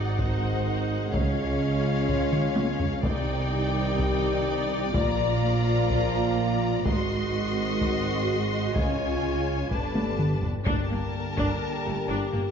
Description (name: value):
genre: cinematic, epic orchestral film score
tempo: 126 BPM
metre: 4/4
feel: straight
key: unclear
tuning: A4 = 441 Hz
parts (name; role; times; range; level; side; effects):
- rich symphonic violin section; melody; 0.0-12.5 s; F5 to C6; -35 LUFS; left 4 dB; none
- rich symphonic violin section; second line; 0.0-12.5 s; Bb4 to Eb5; -35 LUFS; left 4 dB; none
- rich symphonic viola section; accompaniment; 0.0-12.4 s; A3 to Gb4; -33 LUFS; right 2 dB; none
- dark trombone section; sustained chords; 0.0-12.5 s; Db3 to Bb3; -32 LUFS; right 2 dB; none
- mellow French horn section; sustained chords; 0.0-12.5 s; Bb3 to D5; -33 LUFS; left 6 dB; none
- rich symphonic double bass section; bass; 0.0-12.4 s; G1 to Db2; -31 LUFS; right 2 dB; none
- warm symphonic cello section; bass; 0.0-12.4 s; G2 to Db3; -32 LUFS; right 2 dB; none
- solo taiko drums; drums; 0.2-12.5 s; none; -30 LUFS; equal; none
- timpani; percussion; 9.7-11.3 s; G2; -34 LUFS; left 2 dB; none
room: moderate scoring stage reverb, RT60 2.0 s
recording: nothing above 7.5 kHz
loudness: -23 LUFS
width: side -7 dB against mid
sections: 0.0-10.7 A section; 10.7-12.5 B section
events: drum fill 2.3-3.0, 10.0-10.7; timpani fill 9.7-10.7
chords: 0.0 Ab7; 1.1 Db; 3.0 Cmadd9; 5.0 Bb; 6.9 Ab7; 8.8 Db; 9.7 Gadd9; 10.7 Gmadd9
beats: 0.19 0.67 | 1.14 1.62 2.09 2.57 | 3.05 3.52 4.00 4.47 | 4.95 5.43 5.90 6.38 | 6.86 7.33 7.81 8.29 | 8.76 9.24 9.71 10.19 | 10.67 11.14 11.62 12.09